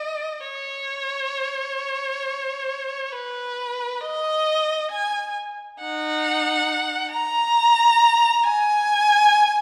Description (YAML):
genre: classical, free, expressive piece for unaccompanied violin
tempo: free time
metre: none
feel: none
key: Eb minor from 5.8 s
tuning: A4 = 440 Hz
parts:
  - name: rich violin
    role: solo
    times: 0.0-9.6 s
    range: Eb4 to Bb5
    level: -22 LUFS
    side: equal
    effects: none
room: wet recital hall reverb, RT60 1.5 s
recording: recorded in a church or concert hall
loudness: -22 LUFS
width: mono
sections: 0.0-9.6 A section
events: none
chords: none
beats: free time